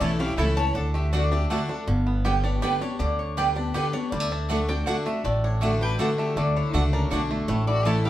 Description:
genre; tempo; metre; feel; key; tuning
bluegrass; 160 BPM; 3/4; straight; D major; A4 = 441 Hz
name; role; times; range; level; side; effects
bluegrass banjo; melody; 0.0-8.1 s; D3 to G4; -32 LUFS; right 1 dB; none
lap resonator guitar; melody; 0.0-8.1 s; A4 to A5; -31 LUFS; left 3 dB; none
clear fiddle; second line; 0.0-1.8, 5.6-8.1 s; C#4 to C#5; -33 LUFS; left 2 dB; none
picked steel-string acoustic guitar; accompaniment; 0.0-8.1 s; E2 to G4; -28 LUFS; left 1 dB; none
mandolin; stabs; 0.0-8.0 s; A3 to A5; -30 LUFS; right 6 dB; none
upright bass; bass; 0.0-8.1 s; G1 to D2; -26 LUFS; equal; none
room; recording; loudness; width
wet studio reverb, RT60 0.7 s; heard from further back in the room; -22 LUFS; side -13 dB against mid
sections
0.0-1.9 A section; 1.9-8.1 A section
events
none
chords
0.0 A; 0.8 D; 1.9 G; 4.1 D; 7.5 A

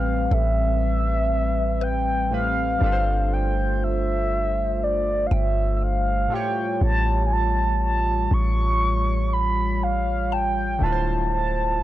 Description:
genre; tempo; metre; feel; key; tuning
contemporary R&B; 60 BPM; 4/4; straight; A minor; A4 = 443 Hz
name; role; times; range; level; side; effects
mellow horn-like synth lead; melody; 0.0-11.8 s; D5 to C#6; -24 LUFS; equal; chorus
warm analog keys; accompaniment; 0.0-11.8 s; A2 to C#5; -32 LUFS; right 1 dB; chorus
glass harmonica; sustained chords; 0.0-11.8 s; G3 to E5; -30 LUFS; left 1 dB; none
warm 808-style bass; bass; 0.0-11.8 s; D1 to A1; -23 LUFS; equal; none
mallet-like synth pluck; texture; 0.3-11.3 s; A4 to A5; -37 LUFS; left 8 dB; chorus, phaser, analog delay
room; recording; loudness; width
little or no reverb; dry, gritty hardware recording; -20 LUFS; side -14 dB against mid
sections
0.0-11.8 A section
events
none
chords
0.0 Am9; 2.8 G9sus4; 6.3 A7b13; 10.8 Dm9

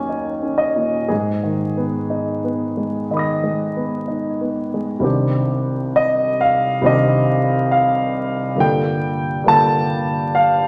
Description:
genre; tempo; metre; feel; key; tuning
classical, impressionist solo piano; 59-70 BPM; 4/4; rubato; G# minor, C minor from 5.0 s; A4 = 440 Hz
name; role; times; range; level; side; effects
clear grand piano; solo; 0.0-10.7 s; C2 to A#6; -19 LUFS; equal; none
room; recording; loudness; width
wet recital hall reverb, RT60 1.5 s; vinyl crackle; -19 LUFS; mono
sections
0.0-5.0 A section; 5.0-10.7 B section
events
none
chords
0.0 D#7sus4; 1.1 G#madd9; 5.0 Cmadd9; 8.6 Gm9

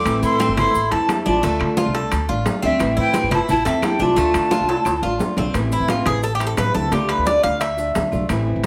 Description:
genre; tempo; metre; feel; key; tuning
latin, Cuban son and guajira; 175 BPM; 4/4; straight; A minor; A4 = 440 Hz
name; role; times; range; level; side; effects
jazz flute; melody; 0.0-5.2 s; E5 to D6; -24 LUFS; equal; none
breathy reedy pan flute; second line; 0.0-5.2 s; C4 to A4; -25 LUFS; equal; none
picked old ladder-braced acoustic guitar; accompaniment; 0.0-8.7 s; D3 to F4; -28 LUFS; equal; none
Cuban tres; arpeggios; 0.0-8.3 s; A3 to F5; -25 LUFS; equal; none
upright bass; bass; 0.0-8.7 s; G1 to D3; -27 LUFS; equal; none
claves; percussion; 0.1-8.5 s; none; -38 LUFS; equal; none
congas; percussion; 0.1-8.7 s; none; -29 LUFS; equal; none
maracas; percussion; 0.1-8.7 s; none; -43 LUFS; equal; none
timbales; percussion; 0.1-8.7 s; none; -31 LUFS; equal; none
room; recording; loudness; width
moderate large studio reverb, RT60 0.8 s; none; -19 LUFS; mono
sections
0.0-5.5 A section; 5.5-8.7 B section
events
drum fill 4.7-5.5; Cuban tres solo 5.5-8.7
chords
0.1 Am; 1.4 Dm; 2.8 Am; 4.2 Dm; 5.5 Am; 6.9 Dm

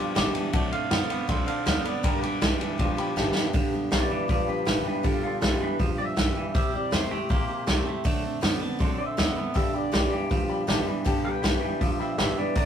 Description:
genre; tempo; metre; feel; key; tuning
rockabilly; 160 BPM; 4/4; straight; G major; A4 = 440 Hz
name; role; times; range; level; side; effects
bright upright piano; accompaniment; 0.0-3.5, 9.5-12.7 s; D5 to D6; -36 LUFS; left 5 dB; none
picked steel-string acoustic guitar; accompaniment; 0.0-12.7 s; G2 to A4; -32 LUFS; left 2 dB; none
twangy electric guitar; riff; 0.0-12.7 s; G2 to C4; -30 LUFS; right 4 dB; none
upright bass; bass; 0.2-12.7 s; E1 to G2; -34 LUFS; equal; none
vintage drum kit; drums; 0.2-12.6 s; hi-hat, kick drum, ride cymbal, snare drum; -26 LUFS; equal; none
electric guitar through a small old amp; melody; 0.7-12.7 s; F4 to G5; -32 LUFS; equal; none
room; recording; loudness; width
moderate studio reverb, RT60 0.6 s; rough rehearsal-room recording; -23 LUFS; side -8 dB against mid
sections
0.0-3.5 A section; 3.5-12.7 B section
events
drum fill 3.2-3.5; clean electric guitar solo 3.5-12.7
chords
0.0 G; 0.5 D7; 2.0 G; 6.6 C; 8.1 D7; 9.6 G

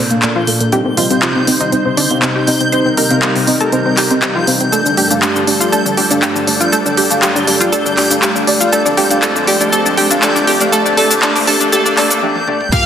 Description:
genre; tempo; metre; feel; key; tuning
progressive house; 120 BPM; 4/4; straight; unclear; A4 = 438 Hz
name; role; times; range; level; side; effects
lush unison pad; sustained chords; 0.0-12.9 s; F2 to C5; -20 LUFS; left 1 dB; chorus, sidechain pumping
analog pluck; arpeggios; 0.0-12.8 s; Bb3 to C5; -16 LUFS; equal; chorus, sidechain pumping, dub echo
deep mellow chord stab; stabs; 0.0-12.8 s; A3 to F5; -17 LUFS; right 1 dB; chorus, sidechain pumping, dub echo
riser and sub drop; sound effects; 0.8-12.9 s; none; -26 LUFS; equal; none
backwards swelling texture; texture; 0.1-12.9 s; G6; -22 LUFS; equal; built-in reverb, sidechain pumping
house drum kit; drums; 0.1-12.8 s; cabasa, crash cymbal, handclaps, hi-hat, toms; -16 LUFS; equal; studio reverb
soft supersaw; melody; 12.7-12.9 s; F5; -15 LUFS; left 1 dB; sidechain pumping
bright symphonic violin section; second line; 12.7-12.9 s; F5; -17 LUFS; left 1 dB; sidechain pumping
electronic kick drum; drums; 12.7-12.8 s; none; -14 LUFS; equal; overdrive, studio reverb
room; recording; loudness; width
wet digital room reverb, RT60 1.3 s; dense, heavily limited modern master, high-pass filter; -10 LUFS; side -9 dB against mid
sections
0.0-12.7 A section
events
build-up 0.0-12.7; filter sweep on synth arpeggio sound 0.0-12.7; filter sweep on synth stab 0.0-12.7; break 12.2-12.7; drum fill 12.2-12.7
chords
0.0 Bbmaj7; 0.7 Cm; 4.7 Gsus2; 8.7 F

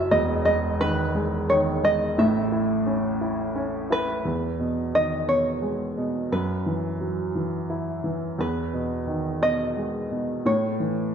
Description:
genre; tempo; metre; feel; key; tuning
pop; 58 BPM (dotted quarters); 6/8; straight; E major; A4 = 440 Hz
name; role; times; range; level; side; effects
open-back banjo; melody; 0.0-11.1 s; B4 to E5; -24 LUFS; equal; none
warm upright piano; accompaniment; 0.0-11.1 s; E1 to F#4; -24 LUFS; right 1 dB; none
room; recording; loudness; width
wet scoring stage reverb, RT60 1.6 s; none; -22 LUFS; side -7 dB against mid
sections
0.0-4.2 A section; 4.2-11.1 B section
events
none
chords
0.1 Emaj7; 2.2 A; 4.2 Emaj7; 6.3 Bsus4/F#; 8.4 Emaj7; 10.5 A

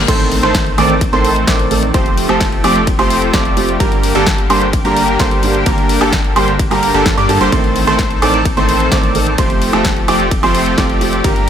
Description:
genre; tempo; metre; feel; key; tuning
EDM, festival progressive house; 129 BPM; 4/4; straight; unclear; A4 = 437 Hz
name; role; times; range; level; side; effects
lush unison pad; sustained chords; 0.0-11.5 s; D3 to A4; -21 LUFS; left 2 dB; chorus, sidechain pumping
warm concert grand piano; arpeggios; 0.0-11.5 s; A5 to D6; -19 LUFS; right 2 dB; sidechain pumping, ping-pong delay
supersaw stab; riff; 0.0-11.5 s; D3 to D5; -17 LUFS; equal; sidechain pumping, ping-pong delay
saturated sub bass; bass; 0.0-11.5 s; F1 to G2; -22 LUFS; left 1 dB; sidechain pumping
dark baby grand piano; accompaniment; 0.1-11.5 s; G2 to C5; -19 LUFS; right 5 dB; sidechain pumping, ping-pong delay
electronic kick drum; drums; 0.1-11.3 s; none; -17 LUFS; left 1 dB; none
house drum kit; drums; 0.1-11.5 s; crash cymbal, hi-hat, ride cymbal, snare drum, woodblock; -20 LUFS; left 1 dB; none
room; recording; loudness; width
light reverb, digital ambience; none; -11 LUFS; side -9 dB against mid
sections
0.0-11.5 A section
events
none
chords
0.1 Adim; 1.9 Fadd9; 3.8 Gm; 7.5 Adim; 9.4 Fadd9

